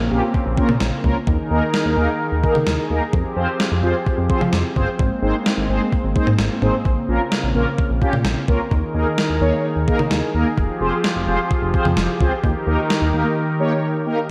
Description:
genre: synth-pop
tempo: 129 BPM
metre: 4/4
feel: straight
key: unclear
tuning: A4 = 441 Hz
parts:
  - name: brassy analog pad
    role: sustained chords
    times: 0.0-14.3 s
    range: Db3 to Bb4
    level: -25 LUFS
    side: equal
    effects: chorus
  - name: chorused synth bass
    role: bass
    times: 0.0-13.2 s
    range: F1 to F3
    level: -24 LUFS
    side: equal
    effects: none
  - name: mellow synth brass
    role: accompaniment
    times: 0.1-14.2 s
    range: Bb3 to Db5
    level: -25 LUFS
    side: equal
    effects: chorus, phaser
  - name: gated 80s digital drum machine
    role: drums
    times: 0.3-13.0 s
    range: kick drum, snare drum, toms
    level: -24 LUFS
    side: equal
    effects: gated reverb, gated reverb snare, overdrive
room: wet lush hall reverb, RT60 1.8 s, digital ambience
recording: dreamy mix soaked in reverb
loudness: -19 LUFS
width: mono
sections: 0.0-14.3 A section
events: none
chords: 0.0 Bbmadd9; 1.3 Ebsus4; 3.1 Fmadd9; 5.0 Abadd9; 6.9 Bbmadd9; 8.7 Ebsus4; 10.6 Fmadd9; 12.4 Eb

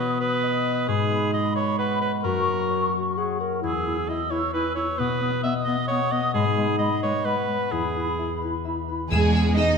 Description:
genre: cinematic, heroic adventure film score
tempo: 88 BPM (dotted quarters)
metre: 6/8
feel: straight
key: E lydian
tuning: A4 = 440 Hz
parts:
  - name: large flute ensemble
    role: second line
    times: 0.0-9.1 s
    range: B5 to E6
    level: -29 LUFS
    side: left 2 dB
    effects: none
  - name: warm clarinet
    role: second line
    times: 0.0-9.0 s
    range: G#3 to A#4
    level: -29 LUFS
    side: left 1 dB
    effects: none
  - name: warm cor anglais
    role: second line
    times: 0.0-8.4 s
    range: G#4 to E5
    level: -27 LUFS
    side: right 5 dB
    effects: none
  - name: concert harp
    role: arpeggios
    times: 0.0-9.8 s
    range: E2 to G#5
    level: -28 LUFS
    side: left 7 dB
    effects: none
  - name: rich symphonic violin section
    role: melody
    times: 9.1-9.7 s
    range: E6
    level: -32 LUFS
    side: left 2 dB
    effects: none
  - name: rich symphonic violin section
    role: second line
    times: 9.1-9.8 s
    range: G#4 to D#5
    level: -23 LUFS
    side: equal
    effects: none
  - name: rich studio double bass section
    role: bass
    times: 9.1-9.7 s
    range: E2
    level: -24 LUFS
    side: right 4 dB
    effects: none
  - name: rich symphonic cello section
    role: bass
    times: 9.1-9.8 s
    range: G#3 to D#4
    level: -24 LUFS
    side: right 4 dB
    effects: none
  - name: timpani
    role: percussion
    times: 9.1-9.8 s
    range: E2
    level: -23 LUFS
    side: equal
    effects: none
room: wet scoring stage reverb, RT60 2.1 s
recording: none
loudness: -22 LUFS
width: side -5 dB against mid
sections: 0.0-9.1 A section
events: none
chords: 0.0 B; 0.9 G#m7; 2.2 F#; 3.6 E; 5.0 B; 6.3 G#m7; 7.7 E

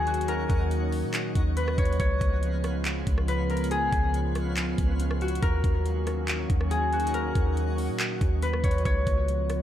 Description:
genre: hip hop, atmospheric cloud-rap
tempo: 140 BPM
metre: 4/4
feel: half-time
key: Eb minor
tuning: A4 = 441 Hz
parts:
  - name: concert harp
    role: melody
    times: 0.0-9.6 s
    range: Gb4 to Db5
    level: -30 LUFS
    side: left 2 dB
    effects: digital delay
  - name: warbly tape-like pad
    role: sustained chords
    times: 0.0-9.6 s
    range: Db3 to Gb4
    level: -32 LUFS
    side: right 1 dB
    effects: chorus, built-in reverb, sidechain pumping
  - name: soft 808-style bass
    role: bass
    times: 0.0-9.6 s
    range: Db2 to Bb2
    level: -28 LUFS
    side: equal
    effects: none
  - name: twinkling granular texture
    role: texture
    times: 0.0-8.8 s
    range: Db4 to Gb5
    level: -40 LUFS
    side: equal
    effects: built-in reverb
  - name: trap drum kit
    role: drums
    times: 0.1-9.6 s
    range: handclaps, hi-hat, kick drum, rim click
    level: -29 LUFS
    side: equal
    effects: none
room: light reverb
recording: none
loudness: -24 LUFS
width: side -11 dB against mid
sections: 0.0-8.9 A section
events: none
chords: 0.0 Ebm7; 2.0 Db7; 5.4 Ebm7; 8.9 Db7

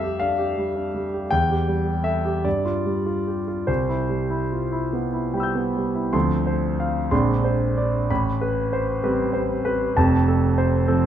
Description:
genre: classical, impressionist solo piano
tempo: 47-67 BPM (dotted quarters)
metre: 6/8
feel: rubato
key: C major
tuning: A4 = 438 Hz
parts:
  - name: clear concert grand piano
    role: solo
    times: 0.0-11.1 s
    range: F1 to G6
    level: -20 LUFS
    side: equal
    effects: none
room: moderate recital hall reverb, RT60 1.3 s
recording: close, detailed microphones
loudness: -20 LUFS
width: side -10 dB against mid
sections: 0.0-6.1 A section; 6.1-11.1 B section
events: none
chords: 0.0 F69; 1.3 Em; 2.5 G5; 3.7 Cmaj7; 6.1 Dm7; 7.1 Bb9; 8.1 Am9; 10.0 F

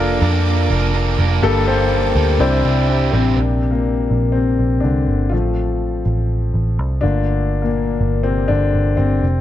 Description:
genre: pop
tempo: 123 BPM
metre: 4/4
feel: straight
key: unclear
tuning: A4 = 441 Hz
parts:
  - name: warm concert grand piano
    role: accompaniment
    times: 0.0-9.4 s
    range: G2 to C5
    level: -19 LUFS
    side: left 4 dB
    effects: none
  - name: rich studio string section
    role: sustained chords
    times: 0.0-3.4 s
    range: Bb3 to D6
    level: -30 LUFS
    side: right 2 dB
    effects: none
  - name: overdriven electric guitar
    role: riff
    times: 0.0-3.4 s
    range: G2 to Bb4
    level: -22 LUFS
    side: right 6 dB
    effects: none
  - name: vintage muted picked electric bass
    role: bass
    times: 0.0-9.4 s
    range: F1 to F2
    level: -18 LUFS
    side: right 1 dB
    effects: none
room: light reverb, studio ambience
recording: none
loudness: -15 LUFS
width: side -12 dB against mid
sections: 0.0-3.4 A section; 3.4-9.4 B section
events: grand piano solo 3.4-9.4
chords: 0.0 Bb/F; 1.4 Gmadd9; 2.4 Cadd9; 3.4 Bbadd9; 5.3 F/A; 7.0 Gm7

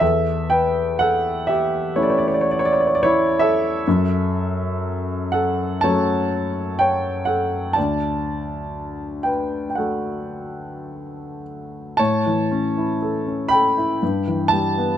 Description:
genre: classical, lyrical solo piano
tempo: 52-64 BPM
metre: 4/4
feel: rubato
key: unclear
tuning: A4 = 438 Hz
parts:
  - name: warm grand piano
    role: solo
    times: 0.0-15.0 s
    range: D2 to B5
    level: -18 LUFS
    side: equal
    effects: none
room: little or no reverb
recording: close, detailed microphones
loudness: -18 LUFS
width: side -10 dB against mid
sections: 0.0-12.0 A section; 12.0-15.0 B section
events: none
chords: 0.0 A/E; 3.9 F#m; 7.8 D; 12.0 A; 14.0 Em/G

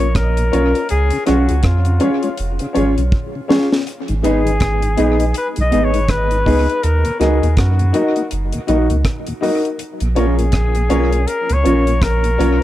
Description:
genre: roots reggae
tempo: 81 BPM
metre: 4/4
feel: swing 59% on 16ths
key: G# dorian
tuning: A4 = 441 Hz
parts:
  - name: clear flugelhorn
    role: melody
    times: 0.0-12.6 s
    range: E#4 to D#5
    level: -21 LUFS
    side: left 2 dB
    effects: tape echo
  - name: mellow tonewheel organ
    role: accompaniment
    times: 0.0-12.5 s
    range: D#2 to D#4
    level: -25 LUFS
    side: left 2 dB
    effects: slow rotary speaker, dub echo
  - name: dark upright piano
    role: stabs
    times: 0.0-12.6 s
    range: C#4 to D#5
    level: -21 LUFS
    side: left 6 dB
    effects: none
  - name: warm sub bass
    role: bass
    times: 0.0-12.6 s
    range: E#1 to F#2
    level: -16 LUFS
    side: right 1 dB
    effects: none
  - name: deep reggae drum kit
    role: drums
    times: 0.0-12.6 s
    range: hi-hat, kick drum, rim click, snare drum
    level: -21 LUFS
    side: equal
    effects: dub echo
  - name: mellow electric guitar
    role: accompaniment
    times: 0.5-12.6 s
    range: B3 to A#4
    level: -22 LUFS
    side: right 6 dB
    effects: tape echo
room: light reverb, small room ambience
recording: none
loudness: -14 LUFS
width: side -14 dB against mid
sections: 0.0-12.6 A section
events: drum fill 3.1-3.9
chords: 0.0 A#m; 0.9 C#; 3.9 G#m; 6.8 D#m; 9.8 A#m

